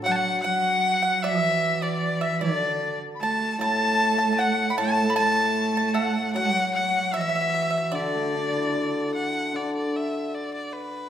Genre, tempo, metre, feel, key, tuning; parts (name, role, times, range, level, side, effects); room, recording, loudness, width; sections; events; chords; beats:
chinese traditional, Chinese chamber ensemble; 76 BPM; 2/4; rubato; D gong mode; A4 = 440 Hz
bright erhu; melody; 0.0-11.1 s; B4 to A5; -26 LUFS; equal
bright reedy large dizi; second line; 0.0-9.1 s; D5 to B5; -28 LUFS; left 6 dB
hammered dulcimer; accompaniment; 0.0-11.1 s; A2 to E4; -30 LUFS; left 3 dB
pipa; second line; 0.1-9.1 s; D5 to B5; -30 LUFS; right 3 dB
warm cello; second line; 0.1-9.2 s; D3 to A3; -28 LUFS; right 5 dB
wet recital hall reverb, RT60 1.5 s; -22 LUFS; side -10 dB against mid
0.0-9.6 A section; 9.6-11.1 B section
| 0.05 0.84 | 1.62 2.42 | 3.22 4.02 | 4.81 5.60 | 6.38 7.17 | 7.95 8.75 | 9.56 10.36